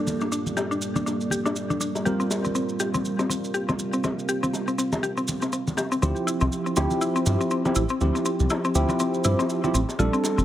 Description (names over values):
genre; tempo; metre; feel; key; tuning
deep house; 121 BPM; 4/4; swing 58% on 16ths; D minor; A4 = 440 Hz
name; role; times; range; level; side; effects
deep dark ambient pad; sustained chords; 0.0-6.0 s; G3 to F5; -32 LUFS; right 1 dB; chorus, built-in reverb
tine electric piano; stabs; 0.0-10.4 s; F3 to Bb4; -27 LUFS; right 1 dB; phaser, tape echo
congas and bongos; percussion; 0.1-10.4 s; none; -31 LUFS; left 1 dB; none
maracas; percussion; 0.1-10.4 s; none; -34 LUFS; right 3 dB; none
mallet-like synth pluck; arpeggios; 0.2-10.4 s; C4 to G4; -28 LUFS; left 2 dB; chorus, tape echo
smooth synth bass; bass; 6.0-10.4 s; F1 to G2; -23 LUFS; equal; tube saturation
room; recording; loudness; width
light reverb, small room reverb; dense, heavily limited modern master; -22 LUFS; side -12 dB against mid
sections
0.0-6.0 A section; 6.0-10.4 B section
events
filter sweep on tine electric piano 0.0-6.0; drop 6.0-10.4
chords
0.0 Gm9; 2.1 C7sus4; 6.0 Dm11 (rootless)